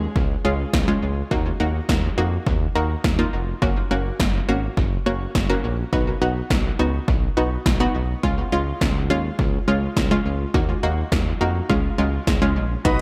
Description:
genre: synth-pop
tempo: 104 BPM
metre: 4/4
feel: straight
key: unclear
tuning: A4 = 442 Hz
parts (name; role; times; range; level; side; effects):
- analog pluck; accompaniment; 0.0-13.0 s; G#3 to G#4; -26 LUFS; equal; chorus, tape echo, shimmer reverb
- smooth synth bass; bass; 0.0-13.0 s; E#1 to E#2; -27 LUFS; equal; none
- 80s electronic pad drums; drums; 0.2-13.0 s; hi-hat, kick drum, snare drum; -25 LUFS; equal; tape echo
- pipe organ, cornet; sustained chords; 12.8-13.0 s; F#4 to B5; -25 LUFS; equal; none
room: moderate spring reverb, RT60 1.7 s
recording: echo-heavy mix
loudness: -22 LUFS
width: mono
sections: 0.0-12.8 A section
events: none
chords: 0.0 C#; 1.3 D#madd9; 3.6 F#; 5.9 B; 8.2 C#; 10.5 D#madd9; 11.7 C#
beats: 0.16 0.73 | 1.31 1.89 2.47 3.04 | 3.62 4.20 4.77 5.35 | 5.93 6.50 7.08 7.66 | 8.23 8.81 9.39 9.97 | 10.54 11.12 11.70 12.27 | 12.85

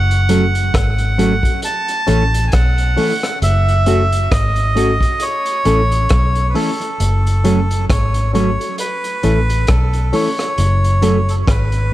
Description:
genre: roots reggae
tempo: 67 BPM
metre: 4/4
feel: swing 57% on 16ths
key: F# dorian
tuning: A4 = 440 Hz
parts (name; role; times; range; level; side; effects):
- melodica; melody; 0.0-11.9 s; A4 to A5; -20 LUFS; right 1 dB; tape echo
- vintage muted fingered electric bass; bass; 0.0-11.9 s; F#1 to B1; -15 LUFS; equal; none
- crunchy breakbeat drum kit; drums; 0.1-11.9 s; hi-hat, kick drum, rim click; -20 LUFS; equal; none
- mellow electric guitar; accompaniment; 0.3-11.2 s; E3 to F#4; -22 LUFS; right 3 dB; tape echo
- reed electric piano; stabs; 0.3-11.2 s; C#4 to A4; -23 LUFS; left 4 dB; overdrive
room: light reverb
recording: none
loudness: -13 LUFS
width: side -15 dB against mid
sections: 0.0-11.9 A section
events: none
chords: 0.0 F#m; 1.6 A; 3.4 F#m; 5.2 A; 7.0 F#m; 8.8 A; 10.6 F#m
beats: 0.74 1.63 2.53 | 3.42 4.32 5.21 6.11 | 7.00 7.89 8.79 9.69 | 10.58 11.47

